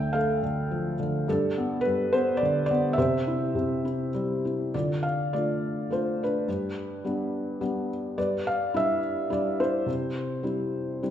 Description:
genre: classical, lyrical solo piano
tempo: 105 BPM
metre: 3/4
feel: rubato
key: D dorian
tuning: A4 = 440 Hz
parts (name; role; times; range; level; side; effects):
- felt-muted upright piano; solo; 0.0-11.1 s; D2 to G5; -25 LUFS; equal; none
room: moderate scoring stage reverb, RT60 1.7 s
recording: minimal, uncompressed stereo recording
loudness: -25 LUFS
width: side -10 dB against mid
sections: 0.0-4.7 A section; 4.7-11.1 B section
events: none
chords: 0.0 Dmadd9; 1.3 G; 3.0 C; 4.7 Dm; 6.5 G; 8.2 Em7/G; 9.9 C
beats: 0.14 0.71 | 1.27 1.85 2.41 | 2.97 3.55 4.14 | 4.74 5.32 5.91 | 6.48 7.04 7.61 | 8.17 8.74 9.31 | 9.88 10.45 11.03

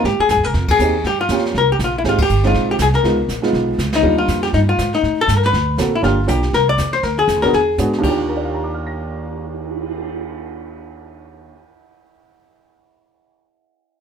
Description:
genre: jazz, small-group swing and bop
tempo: 240 BPM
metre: 4/4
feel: swing 57% on 8ths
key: Eb major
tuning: A4 = 445 Hz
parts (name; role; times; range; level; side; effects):
- archtop guitar, miked and amplified; melody; 0.0-11.5 s; Eb4 to D5; -17 LUFS; left 4 dB; none
- warm upright piano; accompaniment; 0.0-11.8 s; Eb2 to Bb6; -21 LUFS; right 3 dB; none
- upright bass; bass; 0.0-11.5 s; G1 to A2; -20 LUFS; right 1 dB; none
- jazz brush drum kit; drums; 0.0-10.0 s; brushed snare drum, crash cymbal, cymbal swell, hi-hat, kick drum, ride cymbal, snare drum; -26 LUFS; right 1 dB; none
room: moderate club reverb, RT60 0.6 s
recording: minimal, uncompressed stereo recording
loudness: -15 LUFS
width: side -7 dB against mid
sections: 0.0-6.0 A section; 6.0-8.0 B section; 8.0-10.0 C section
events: band accent 0.7, 2.2, 3.9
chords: 0.0 Abmaj7; 1.0 Gm7b5; 1.5 C7(no3); 2.0 Fm9; 3.0 Db9; 4.0 Ebmaj7; 5.0 Gsus2; 5.5 D7b13; 6.0 Gm7; 6.5 C; 7.0 Bb7; 7.5 E7; 8.0 Ebmaj7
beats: | 0.04 0.29 0.54 0.79 | 1.04 1.29 1.54 1.79 | 2.04 2.29 2.54 2.79 | 3.04 3.29 3.54 3.79 | 4.04 4.29 4.54 4.79 | 5.04 5.29 5.53 5.78 | 6.03 6.28 6.53 6.78 | 7.03 7.28 7.53 7.78 | 8.03 8.28 8.53 8.78 | 9.03 9.28 9.53 9.78

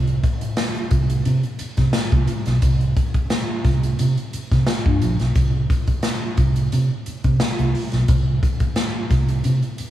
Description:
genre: funk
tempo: 88 BPM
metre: 4/4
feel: straight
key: unclear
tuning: A4 = 440 Hz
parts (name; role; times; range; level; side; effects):
- vintage muted fingered electric bass; bass; 0.0-9.8 s; Bb1 to C3; -20 LUFS; right 1 dB; none
- swinging big-band drum kit; drums; 0.1-9.9 s; hi-hat, kick drum, snare drum; -20 LUFS; equal; none
room: moderate large studio reverb, RT60 1.2 s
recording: band playing live in one room, small room ambience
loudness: -17 LUFS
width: side -13 dB against mid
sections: 0.0-9.9 A section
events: none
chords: none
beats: 0.58 1.26 1.94 | 2.62 3.31 3.99 4.67 | 5.35 6.04 6.72 7.40 | 8.08 8.77 9.45

